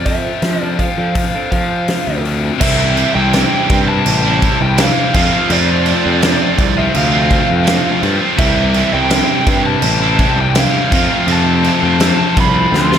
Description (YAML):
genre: quiet-loud alternative rock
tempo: 83 BPM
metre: 4/4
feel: straight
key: C major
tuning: A4 = 440 Hz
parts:
  - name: lead guitar through a small cranked amp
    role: melody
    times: 0.0-13.0 s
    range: D5 to C6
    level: -19 LUFS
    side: right 2 dB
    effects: overdrive, slapback echo
  - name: scooped high-gain guitar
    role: riff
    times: 0.0-13.0 s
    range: F2 to F4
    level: -19 LUFS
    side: left 11 dB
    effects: distortion
  - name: fuzz picked electric bass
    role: bass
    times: 0.0-13.0 s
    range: A1 to F3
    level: -18 LUFS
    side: equal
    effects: overdrive
  - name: electric guitar through a small old amp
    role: arpeggios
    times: 0.1-2.1 s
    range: F3 to A4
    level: -26 LUFS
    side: right 1 dB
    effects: analog chorus, slapback echo
  - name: huge arena drum kit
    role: drums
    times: 0.1-13.0 s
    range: crash cymbal, hi-hat, kick drum, snare drum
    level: -17 LUFS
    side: equal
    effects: none
  - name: distorted electric guitar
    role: riff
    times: 2.6-13.0 s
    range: C3 to F4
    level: -20 LUFS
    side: right 12 dB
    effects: distortion
  - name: distorted electric guitar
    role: riff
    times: 2.6-13.0 s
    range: F2 to C4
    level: -19 LUFS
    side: equal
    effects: distortion
room: light reverb, small room ambience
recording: none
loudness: -11 LUFS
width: side -8 dB against mid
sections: 0.0-2.6 A section; 2.6-13.0 B section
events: drum fill 12.7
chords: 0.0 F6; 2.6 C; 5.2 F6; 8.4 C; 10.9 F6